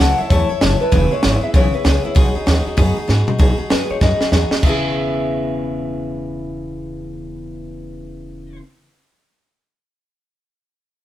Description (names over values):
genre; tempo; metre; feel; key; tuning
rockabilly; 194 BPM; 4/4; swing 62% on 8ths; E major; A4 = 441 Hz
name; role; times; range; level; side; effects
electric guitar through a small old amp; melody; 0.0-8.6 s; B4 to F#5; -22 LUFS; left 2 dB; phaser
picked steel-string acoustic guitar; accompaniment; 0.0-8.6 s; C#3 to C#5; -23 LUFS; left 1 dB; none
upright bass; bass; 0.0-8.6 s; E1 to G#2; -20 LUFS; equal; none
compact cocktail drum kit; drums; 0.0-4.7 s; crash cymbal, hi-hat, kick drum, snare drum, toms; -17 LUFS; equal; none
room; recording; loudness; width
light reverb; band playing live in one room; -14 LUFS; side -13 dB against mid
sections
0.0-3.4 A section; 3.4-4.6 B section; 4.6-7.1 C section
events
drum fill 3.1-3.4, 4.0-4.6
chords
0.0 A6; 0.9 E6; 2.2 B6; 4.6 E6